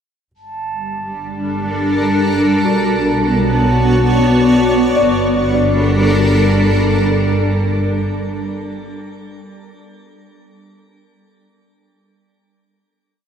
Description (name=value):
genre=ambient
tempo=78 BPM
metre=3/4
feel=straight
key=unclear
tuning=A4 = 440 Hz
part: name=granular cloud pad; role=sustained chords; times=0.9-8.0 s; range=G3 to D5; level=-15 LUFS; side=equal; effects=built-in reverb, shimmer reverb
part: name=dark studio double bass section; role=bass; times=0.3-8.0 s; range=G1 to B1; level=-19 LUFS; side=equal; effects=none
part: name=glass harmonica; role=texture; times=0.3-5.0 s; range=A5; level=-25 LUFS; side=right 4 dB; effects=shimmer reverb
part: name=soft synth bell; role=arpeggios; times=2.6-9.8 s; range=B3 to D5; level=-21 LUFS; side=left 4 dB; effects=chorus, phaser, diffuse ambient delay, shimmer reverb
room=wet cathedral reverb, RT60 5.0 s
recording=dreamy mix soaked in reverb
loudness=-13 LUFS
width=side -8 dB against mid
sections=0.3-5.0 A section; 5.0-7.3 final chord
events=fade-in on synth bell 0.3-5.0; fade-in on double bass section 0.3-5.0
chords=0.3 Gm; 2.7 Bm9; 5.0 Gm